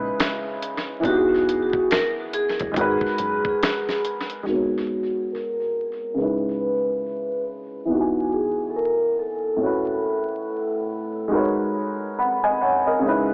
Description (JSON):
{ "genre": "lo-fi hip hop", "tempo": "70 BPM", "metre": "4/4", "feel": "swing 59% on 16ths", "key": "G# minor", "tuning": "A4 = 439 Hz", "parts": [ { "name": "vibraphone with hard mallets", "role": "melody", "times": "0.0-10.9 s", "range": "F#4 to B4", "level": "-24 LUFS", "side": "equal", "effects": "low-pass filter, tape echo" }, { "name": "dark upright piano", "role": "accompaniment", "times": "0.0-13.3 s", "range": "A2 to B5", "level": "-23 LUFS", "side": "equal", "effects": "cassette tape, low-pass filter" }, { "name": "deep dub fingered electric bass", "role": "bass", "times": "0.0-3.5 s", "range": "E1 to A#1", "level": "-32 LUFS", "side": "equal", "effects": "none" }, { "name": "dusty soul sampler-style drum kit", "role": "drums", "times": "0.2-4.5 s", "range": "hi-hat, kick drum, snare drum", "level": "-26 LUFS", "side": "equal", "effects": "tape echo" } ], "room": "moderate spring reverb, RT60 2.5 s", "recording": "echo-heavy mix, vinyl crackle, AM radio sound", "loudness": "-20 LUFS", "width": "side -37 dB against mid", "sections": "0.0-4.5 A section; 4.5-13.3 B section", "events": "filter sweep 4.5-13.3", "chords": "0.0 C#m7; 1.0 Emaj9; 2.7 G#m9; 4.5 G#m11; 6.2 C#m7; 7.9 Emaj9; 9.6 A69; 11.3 G#m11" }